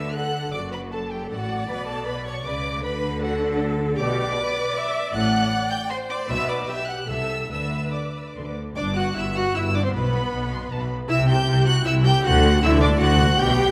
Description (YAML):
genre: quick classical-period movement for string orchestra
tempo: 156 BPM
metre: 3/4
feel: rubato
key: G major from 4.0 s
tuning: A4 = 440 Hz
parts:
  - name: rich chamber violin section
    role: melody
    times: 0.0-13.7 s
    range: F#5 to G6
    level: -31 LUFS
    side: equal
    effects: none
  - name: clear chamber violin section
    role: second line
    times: 0.0-13.7 s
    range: F#4 to G5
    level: -31 LUFS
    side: equal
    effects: none
  - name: bright chamber viola section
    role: accompaniment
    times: 0.0-13.7 s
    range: B3 to E5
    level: -30 LUFS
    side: equal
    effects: none
  - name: clear chamber cello section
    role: bass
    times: 0.0-13.7 s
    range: F#2 to D3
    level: -29 LUFS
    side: equal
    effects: none
  - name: clear chamber double bass section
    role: bass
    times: 0.0-13.7 s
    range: F#1 to D2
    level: -28 LUFS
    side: equal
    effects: none
room: wet concert hall reverb, RT60 1.9 s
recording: none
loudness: -23 LUFS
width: mono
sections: 0.0-8.8 A section; 8.8-13.7 B section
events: none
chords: 0.0 D; 0.5 D/F#; 1.7 Bm; 2.8 Bm/D; 4.0 G/B; 5.1 F#dim/A; 6.3 G/B; 7.1 Am/C; 7.5 Bm/D; 8.8 Em9/G; 9.9 N.C.; 11.1 C5; 12.2 D